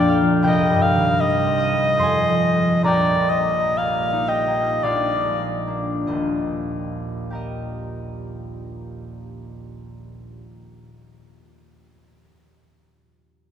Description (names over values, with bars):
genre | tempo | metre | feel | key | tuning
classical, romantic duo for oboe and harp | 46-84 BPM | 3/4 | rubato | Eb major | A4 = 439 Hz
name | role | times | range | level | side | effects
clear oboe | melody | 0.0-5.4 s | D5 to F5 | -21 LUFS | equal | none
concert harp | accompaniment | 0.0-11.7 s | Eb1 to Bb6 | -22 LUFS | equal | none
room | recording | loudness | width
wet cathedral reverb, RT60 5.2 s | recorded in a church or concert hall | -18 LUFS | side -9 dB against mid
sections
0.0-6.1 A section; 6.1-13.2 B section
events
slowing down 0.0-6.1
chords
0.5 Cm; 2.0 Fm; 2.8 Eb/Bb; 4.8 Bb7; 6.1 Eb